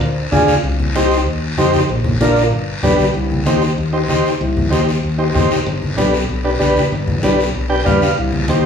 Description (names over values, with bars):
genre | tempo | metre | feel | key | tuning
latin, cumbia | 191 BPM | 4/4 | straight | C minor, C harmonic minor from 3.1 s | A4 = 440 Hz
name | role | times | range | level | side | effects
modern bright fingered electric bass | bass | 0.0-8.7 s | G1 to G2 | -19 LUFS | left 1 dB | none
congas | percussion | 0.0-8.6 s | none | -21 LUFS | left 1 dB | none
guiro | percussion | 0.0-8.6 s | none | -26 LUFS | left 3 dB | none
combo organ | accompaniment | 0.3-8.7 s | D4 to G5 | -16 LUFS | equal | none
room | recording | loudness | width
wet large studio reverb, RT60 0.9 s | band playing live in one room, studio reverb, faint mains hum | -14 LUFS | side -7 dB against mid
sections
0.0-3.1 A section; 3.1-8.7 B section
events
transistor combo organ fill 7.5-8.2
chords
0.0 Bb (rootless); 0.6 Cm; 1.9 Bb; 2.5 G; 3.1 Cm; 5.7 G